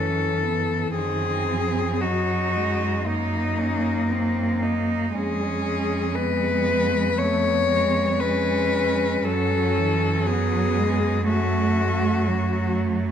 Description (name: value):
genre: classical, lyrical piece for cello ensemble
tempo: 58 BPM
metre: 4/4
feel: rubato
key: F# minor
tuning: A4 = 439 Hz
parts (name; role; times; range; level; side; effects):
- rich cello; melody; 0.0-12.8 s; D#4 to C#5; -24 LUFS; left 5 dB; none
- rich cello; second line; 0.0-13.1 s; A3 to D#4; -28 LUFS; right 8 dB; none
- rich cello; accompaniment; 0.0-13.1 s; D#3 to A#3; -26 LUFS; left 1 dB; none
- rich cello; bass; 0.0-13.1 s; E#2 to F#2; -27 LUFS; right 2 dB; none
room: moderate concert hall reverb, RT60 2.3 s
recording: close, detailed microphones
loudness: -20 LUFS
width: side -9 dB against mid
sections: 0.0-13.1 A section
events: none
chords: 0.0 F#m; 0.9 G#7/F#; 5.1 C#7/E#; 9.2 F#m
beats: | 0.95 2.00 3.07 4.11 | 5.13 6.15 7.18 8.20 | 9.24 10.26 11.27 12.28